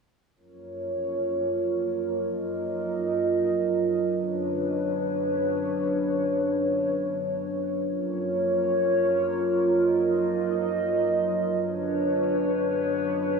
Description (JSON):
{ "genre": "hip hop", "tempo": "free time", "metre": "none", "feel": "none", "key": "F# major", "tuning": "A4 = 440 Hz", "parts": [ { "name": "dark analog pad", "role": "sustained chords", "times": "0.4-13.4 s", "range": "F#3 to D#5", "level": "-24 LUFS", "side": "right 1 dB", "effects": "lush chorus" } ], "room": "wet huge ambient reverb, RT60 6.5 s", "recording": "small room reverb", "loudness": "-23 LUFS", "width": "side -4 dB against mid", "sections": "0.4-7.9 A section; 7.9-13.4 B section", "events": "none", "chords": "0.4 F#maj7; 4.1 Bmadd9; 7.9 F#maj7; 11.6 Bmadd9" }